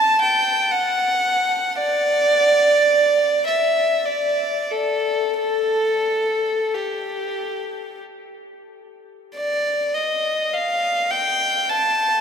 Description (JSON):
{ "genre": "classical, free, expressive piece for unaccompanied violin", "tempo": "39-59 BPM", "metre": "3/4", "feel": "rubato", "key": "unclear", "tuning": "A4 = 439 Hz", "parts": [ { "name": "rich violin", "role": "solo", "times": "0.0-12.2 s", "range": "G4 to A5", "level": "-18 LUFS", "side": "equal", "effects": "none" } ], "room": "wet cathedral reverb, RT60 5.4 s", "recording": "in a vast, echoing space", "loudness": "-17 LUFS", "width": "side -7 dB against mid", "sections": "0.0-9.4 A section; 9.4-12.2 B section", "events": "none", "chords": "none", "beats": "0.73 | 1.78 2.89 4.06 | 5.40 6.73 8.00 | 9.37 10.56 11.70" }